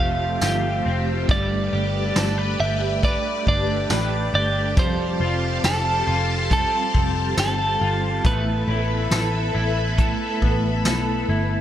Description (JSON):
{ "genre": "dream pop", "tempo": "69 BPM", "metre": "4/4", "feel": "straight", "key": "unclear", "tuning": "A4 = 440 Hz", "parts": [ { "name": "clean electric guitar", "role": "melody", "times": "0.0-10.8 s", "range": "A4 to F5", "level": "-25 LUFS", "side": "right 1 dB", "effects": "spring reverb, tape echo" }, { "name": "electric guitar at the edge of break-up", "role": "accompaniment", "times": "0.0-11.6 s", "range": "F3 to B4", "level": "-29 LUFS", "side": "right 2 dB", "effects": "harmonic tremolo, ensemble chorus" }, { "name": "phased string machine", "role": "sustained chords", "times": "0.0-11.6 s", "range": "F4 to B5", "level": "-29 LUFS", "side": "left 1 dB", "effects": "ensemble chorus, phaser" }, { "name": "electric guitar at the edge of break-up", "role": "arpeggios", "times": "0.0-11.6 s", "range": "F3 to B4", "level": "-28 LUFS", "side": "left 2 dB", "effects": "analog chorus, tape echo" }, { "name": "vintage muted picked electric bass", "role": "bass", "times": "0.0-11.6 s", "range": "F1 to B1", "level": "-25 LUFS", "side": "equal", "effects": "none" }, { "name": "vintage brush drum kit", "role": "drums", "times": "0.4-11.1 s", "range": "hi-hat, kick drum, snare drum, tambourine", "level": "-22 LUFS", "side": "equal", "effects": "none" } ], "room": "light reverb", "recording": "none", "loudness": "-19 LUFS", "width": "side -11 dB against mid", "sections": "0.0-11.6 A section", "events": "none", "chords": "0.0 Fadd9; 1.3 Gadd9; 4.8 Fadd9; 8.2 Asus2" }